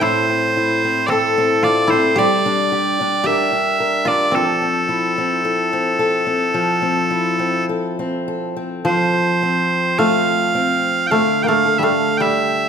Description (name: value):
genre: celtic folk, Celtic slow air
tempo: 51-57 BPM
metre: 4/4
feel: rubato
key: unclear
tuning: A4 = 440 Hz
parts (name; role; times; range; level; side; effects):
- loud bright bagpipes; melody; 0.0-12.7 s; A4 to G5; -18 LUFS; right 2 dB; none
- koto; second line; 0.0-12.7 s; F3 to G4; -21 LUFS; right 1 dB; none
- picked steel-string acoustic guitar; accompaniment; 0.0-12.7 s; A2 to Bb4; -20 LUFS; left 2 dB; none
room: moderate concert hall reverb, RT60 1.8 s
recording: minimal, uncompressed stereo recording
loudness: -15 LUFS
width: side -7 dB against mid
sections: 0.0-8.8 A section; 8.8-12.7 B section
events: none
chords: 0.0 Am; 2.2 Gm; 4.3 Fmaj7; 8.8 F; 11.1 Dsus4